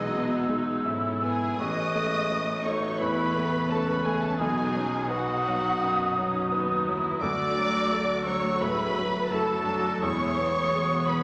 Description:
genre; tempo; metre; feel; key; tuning
cinematic, emotional film score for orchestra; 85 BPM; 4/4; rubato; E major; A4 = 440 Hz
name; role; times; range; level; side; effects
warm symphonic violin section; melody; 0.0-11.2 s; D#5 to D#6; -34 LUFS; equal; none
clear clarinet; second line; 0.0-11.2 s; F#4 to B4; -39 LUFS; equal; none
mellow silver concert flute; second line; 0.0-11.2 s; C#6 to E6; -33 LUFS; equal; none
warm symphonic violin section; second line; 0.0-11.2 s; D#4 to D#5; -34 LUFS; equal; none
rich symphonic viola section; accompaniment; 0.0-11.2 s; E3 to F#4; -37 LUFS; equal; none
warm baby grand piano; accompaniment; 0.0-11.2 s; A1 to B4; -32 LUFS; equal; none
rich symphonic cello section; bass; 0.0-11.2 s; D2 to C#3; -41 LUFS; equal; none
rich symphonic double bass section; bass; 0.0-11.2 s; E1 to D#2; -43 LUFS; equal; none
room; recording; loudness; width
wet scoring stage reverb, RT60 1.4 s; none; -27 LUFS; mono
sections
0.0-11.2 A section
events
none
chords
0.0 Emaj7/B; 1.6 Aadd9; 4.4 B; 7.2 Dadd9; 10.0 Emaj7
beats
0.14 0.86 | 1.60 2.31 3.00 3.70 | 4.39 5.09 5.81 6.51 | 7.21 7.91 8.61 9.31 | 10.03 10.74

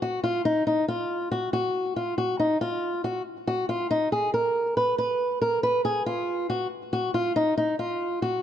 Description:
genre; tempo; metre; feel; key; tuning
hip hop; 139 BPM; 4/4; half-time; unclear; A4 = 441 Hz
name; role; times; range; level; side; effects
fingerpicked old ladder-braced acoustic guitar; solo; 0.0-8.4 s; Eb4 to Cb5; -24 LUFS; equal; low-pass filter
room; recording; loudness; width
moderate concert hall reverb, RT60 1.9 s, studio reverb; dark, warm production; -24 LUFS; side -10 dB against mid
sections
0.0-8.4 A section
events
none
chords
none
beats
0.24 | 0.67 1.10 1.53 1.96 | 2.40 2.83 3.26 3.69 | 4.12 4.55 4.99 5.42 | 5.85 6.28 6.71 7.14 | 7.57 8.01

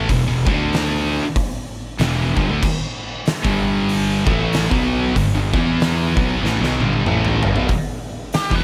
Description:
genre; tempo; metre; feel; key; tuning
stoner and doom metal; 95 BPM; 4/4; swing 59% on 8ths; unclear; A4 = 444 Hz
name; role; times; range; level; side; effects
scooped high-gain guitar; riff; 0.0-8.6 s; E2 to E4; -28 LUFS; equal; distortion
thick fuzz guitar; riff; 0.0-8.6 s; E2 to E4; -24 LUFS; equal; distortion
fuzz fingered electric bass; bass; 0.0-8.6 s; E1 to E2; -26 LUFS; equal; overdrive
oversized low-tuned drum kit; drums; 0.1-8.6 s; crash cymbal, hi-hat, kick drum, snare drum, toms; -24 LUFS; equal; none
thick fuzz guitar; riff; 3.4-8.6 s; E2 to E4; -27 LUFS; equal; none
fuzz lead guitar; melody; 8.3-8.6 s; G4 to B4; -24 LUFS; equal; wah, distortion
room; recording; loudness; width
small room ambience; none; -19 LUFS; mono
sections
0.0-7.7 A section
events
drum fill 6.4-7.7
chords
0.4 D5; 2.0 Em; 3.4 G5; 5.5 E5; 6.1 G5; 7.7 Em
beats
| 0.09 0.73 1.36 2.00 | 2.63 3.26 3.90 4.53 | 5.16 5.80 6.43 7.07 | 7.70 8.33

